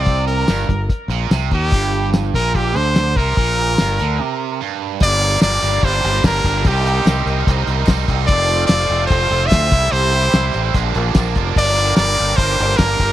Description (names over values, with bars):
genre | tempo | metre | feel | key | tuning
indie rock | 146 BPM | 4/4 | straight | G minor | A4 = 440 Hz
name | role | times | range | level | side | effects
brilliant trumpet | melody | 0.0-13.1 s | G4 to E5 | -19 LUFS | left 1 dB | tape echo
biting overdriven guitar | riff | 0.0-13.1 s | G2 to F4 | -22 LUFS | right 13 dB | none
growling fingered electric bass | bass | 0.0-13.1 s | F1 to Eb2 | -19 LUFS | left 1 dB | overdrive
cloth-damped thuddy drum kit | drums | 0.1-13.1 s | crash cymbal, hi-hat, kick drum, snare drum, tambourine | -17 LUFS | left 1 dB | none
sweeping resonant pad | sustained chords | 5.0-13.1 s | G4 to D6 | -28 LUFS | equal | chorus
group handclap | percussion | 5.4-12.9 s | none | -35 LUFS | left 13 dB | none
room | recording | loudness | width
small room reverb | 1960s-style stereo with parts hard left and right | -14 LUFS | side -13 dB against mid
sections
0.0-5.0 A section; 5.0-13.1 B section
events
break 4.2-5.0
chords
0.0 Gm; 6.7 Cm7; 8.3 F; 9.7 C; 10.8 Bbmaj7; 11.6 Gm